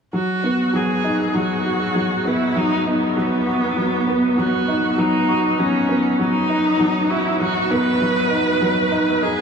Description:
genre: electronica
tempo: 99 BPM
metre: 4/4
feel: straight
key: G# minor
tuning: A4 = 441 Hz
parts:
  - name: rich viola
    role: melody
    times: 0.1-9.4 s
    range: B3 to B4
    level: -20 LUFS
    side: right 1 dB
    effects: tape echo
  - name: felt-muted upright piano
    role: riff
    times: 0.1-9.4 s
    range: F#3 to F#4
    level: -19 LUFS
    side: equal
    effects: tape echo
room: wet huge ambient reverb, RT60 8.9 s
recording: dreamy mix soaked in reverb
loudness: -17 LUFS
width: side -6 dB against mid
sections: 0.1-9.4 A section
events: none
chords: 0.1 G#m7 (rootless)

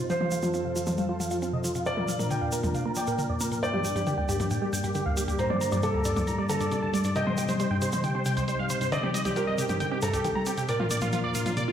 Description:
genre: uplifting trance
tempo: 136 BPM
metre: 4/4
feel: straight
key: C dorian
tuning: A4 = 441 Hz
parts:
  - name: big supersaw lead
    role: melody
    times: 0.0-11.7 s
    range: F4 to Bb5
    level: -32 LUFS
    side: right 1 dB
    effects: phaser, cassette tape, low-pass filter, ping-pong delay
  - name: lush unison pad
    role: sustained chords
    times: 0.0-11.7 s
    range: F2 to C5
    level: -32 LUFS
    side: equal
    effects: chorus
  - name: analog pluck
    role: arpeggios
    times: 0.0-11.7 s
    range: C2 to F4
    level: -31 LUFS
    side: equal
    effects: chorus
  - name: felt-muted upright piano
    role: second line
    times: 0.1-11.5 s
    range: A4 to G5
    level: -32 LUFS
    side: right 1 dB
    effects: dub echo
  - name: big-room dance drum kit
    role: drums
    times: 0.1-11.7 s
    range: hi-hat, toms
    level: -35 LUFS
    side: left 1 dB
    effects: low-pass filter on hats, low-pass filter on snare, low-pass filter on cymbals, low-pass filter on toms, low-pass filter on room
  - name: tube shaker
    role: percussion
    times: 0.1-11.7 s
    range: none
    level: -38 LUFS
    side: right 2 dB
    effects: none
room: moderate digital room reverb, RT60 1.2 s, digital ambience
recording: played on a big sound system in a bare room, stone room reverb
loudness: -25 LUFS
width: side -9 dB against mid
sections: 0.0-11.7 A section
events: filter sweep on drum 0.0-11.7; filter sweep on supersaw synth 0.0-11.7; filter sweep on synth arpeggio sound 0.0-11.7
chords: 0.1 F; 1.9 Bb; 3.6 Gm; 7.2 Cm; 10.7 Bb

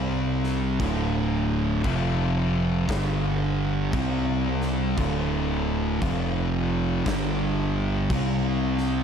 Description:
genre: stoner and doom metal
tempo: 58 BPM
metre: 4/4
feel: swing 64% on 8ths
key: unclear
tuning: A4 = 439 Hz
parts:
  - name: thick fuzz guitar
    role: riff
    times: 0.0-9.0 s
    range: D2 to C4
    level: -28 LUFS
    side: left 10 dB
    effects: distortion
  - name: thick fuzz guitar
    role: riff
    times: 0.0-9.0 s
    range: D2 to C4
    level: -27 LUFS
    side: right 9 dB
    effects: distortion
  - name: growling fingered electric bass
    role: bass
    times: 0.0-9.0 s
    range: D1 to C2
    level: -29 LUFS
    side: equal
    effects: overdrive
  - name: big rock drum kit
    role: drums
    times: 0.4-8.9 s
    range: crash cymbal, kick drum, snare drum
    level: -33 LUFS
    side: left 1 dB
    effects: none
room: light reverb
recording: dark, warm production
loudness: -22 LUFS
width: side -7 dB against mid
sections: 0.0-9.0 A section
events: none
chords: 0.0 C5; 0.8 D5; 1.8 F5; 2.9 G5; 3.9 C5; 5.0 D5; 6.0 F5; 7.1 G5; 8.1 C5

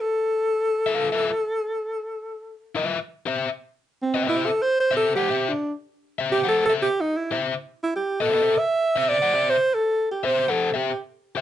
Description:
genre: funk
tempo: 119 BPM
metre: 4/4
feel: straight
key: unclear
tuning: A4 = 440 Hz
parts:
  - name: breathy alto saxophone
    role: melody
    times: 0.0-11.0 s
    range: C4 to E5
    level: -21 LUFS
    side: right 1 dB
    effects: none
  - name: overdriven electric guitar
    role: accompaniment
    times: 0.9-11.4 s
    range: F4 to F#5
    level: -25 LUFS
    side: left 5 dB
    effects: none
room: light reverb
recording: nothing above 10.6 kHz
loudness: -21 LUFS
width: side -11 dB against mid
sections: 0.0-3.3 A section; 3.3-11.4 B section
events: alto saxophone solo 3.3-11.4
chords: 0.0 Fmaj7#11; 3.3 C

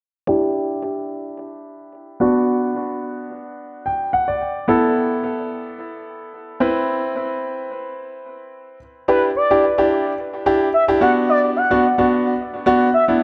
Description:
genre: dance-pop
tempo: 109 BPM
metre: 4/4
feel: straight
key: E minor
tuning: A4 = 440 Hz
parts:
  - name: clear grand piano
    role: accompaniment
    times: 0.3-13.2 s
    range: B3 to G5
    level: -21 LUFS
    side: equal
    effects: low-pass filter, tape echo
  - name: expressive portamento lead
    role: melody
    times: 9.1-13.0 s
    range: B4 to F#5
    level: -21 LUFS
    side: equal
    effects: chorus, tape echo
room: moderate echo chamber reverb, RT60 2.2 s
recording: echo-heavy mix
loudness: -19 LUFS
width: mono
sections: 0.3-9.1 A section; 9.1-13.2 B section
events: filter sweep on grand piano 0.3-9.1; grand piano fill 3.6-4.7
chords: 0.3 Em7; 2.2 Bm; 4.7 Asus2; 6.6 Cmaj7; 9.1 Em7; 11.0 Bm

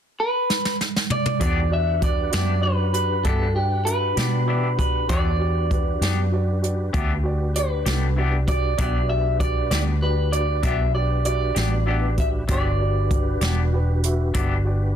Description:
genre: slow blues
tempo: 65 BPM (dotted quarters)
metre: 12/8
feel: straight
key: E minor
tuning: A4 = 440 Hz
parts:
  - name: electric guitar through a small old amp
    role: melody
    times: 0.2-15.0 s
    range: G4 to E5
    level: -26 LUFS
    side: right 1 dB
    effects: spring reverb
  - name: jazz brush drum kit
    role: drums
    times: 0.5-14.5 s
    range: hi-hat, kick drum, snare drum, toms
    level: -24 LUFS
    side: equal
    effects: none
  - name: electric guitar through a small old amp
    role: accompaniment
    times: 1.4-14.5 s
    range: E3 to G4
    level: -30 LUFS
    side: left 6 dB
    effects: harmonic tremolo
  - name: warm concert grand piano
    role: accompaniment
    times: 1.4-14.9 s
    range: F#4 to E5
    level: -32 LUFS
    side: right 3 dB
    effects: none
  - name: mellow tonewheel organ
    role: sustained chords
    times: 1.4-15.0 s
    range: D4 to F#5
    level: -33 LUFS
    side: left 1 dB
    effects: slow rotary speaker, chorus vibrato
  - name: vintage muted fingered electric bass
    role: bass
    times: 1.4-15.0 s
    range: E1 to B2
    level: -22 LUFS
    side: equal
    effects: none
room: little or no reverb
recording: dense, heavily limited modern master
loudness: -19 LUFS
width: side -9 dB against mid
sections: 0.0-1.4 A section; 1.4-15.0 B section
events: drum fill 0.5-1.4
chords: 0.0 N.C.; 1.4 Em7

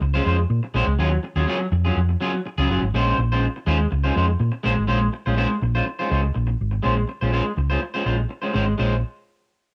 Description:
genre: disco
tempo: 123 BPM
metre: 4/4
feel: straight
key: Bb minor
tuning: A4 = 440 Hz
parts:
  - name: electric guitar at the edge of break-up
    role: accompaniment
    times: 0.0-8.9 s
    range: Gb3 to C5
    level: -25 LUFS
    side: equal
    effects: lush chorus, cassette tape
  - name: hollow-body short-scale fingered electric bass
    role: bass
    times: 0.0-9.0 s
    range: Gb1 to Bb2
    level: -23 LUFS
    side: equal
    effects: none
room: little or no reverb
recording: home recording on cassette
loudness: -22 LUFS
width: mono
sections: 0.0-4.9 A section; 4.9-8.8 B section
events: none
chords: 0.0 Bbm9; 1.0 Ebm11; 2.9 Bbm9

